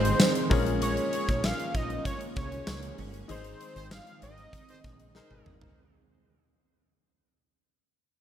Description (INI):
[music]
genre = 1980s-style pop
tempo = 97 BPM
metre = 4/4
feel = straight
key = Ab major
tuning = A4 = 440 Hz
[part]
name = fat analog lead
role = melody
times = 0.0-5.1 s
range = C5 to F5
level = -33 LUFS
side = right 1 dB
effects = tape echo
[part]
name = clear grand piano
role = accompaniment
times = 0.0-5.8 s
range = Bb3 to Db5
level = -35 LUFS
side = left 7 dB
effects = none
[part]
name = phased analog pad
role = sustained chords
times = 0.0-5.7 s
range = Eb3 to Db4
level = -38 LUFS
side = left 1 dB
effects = phaser, chorus
[part]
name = twelve-string electric guitar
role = riff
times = 0.0-6.3 s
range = Eb3 to F4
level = -38 LUFS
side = right 6 dB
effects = ensemble chorus
[part]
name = woody fretless electric bass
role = bass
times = 0.0-5.7 s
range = G1 to Db2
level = -34 LUFS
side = equal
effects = none
[part]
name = huge arena drum kit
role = drums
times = 0.0-5.8 s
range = hi-hat, kick drum, snare drum, tambourine, toms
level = -28 LUFS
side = equal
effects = none
[part]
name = warm horn section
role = stabs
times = 3.8-5.5 s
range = Eb4 to C5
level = -60 LUFS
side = right 2 dB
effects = tape echo
[sound]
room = light reverb, studio reverb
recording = none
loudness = -26 LUFS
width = side -10 dB against mid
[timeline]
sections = 0.0-5.8 A section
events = fade-out 0.0-5.8; band accent 3.3-5.8; drum fill 5.2-5.8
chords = 0.0 Ab; 0.5 Bbm7; 3.3 Ab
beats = 0.20 | 0.82 1.44 2.06 2.68 | 3.30 3.92 4.53 5.15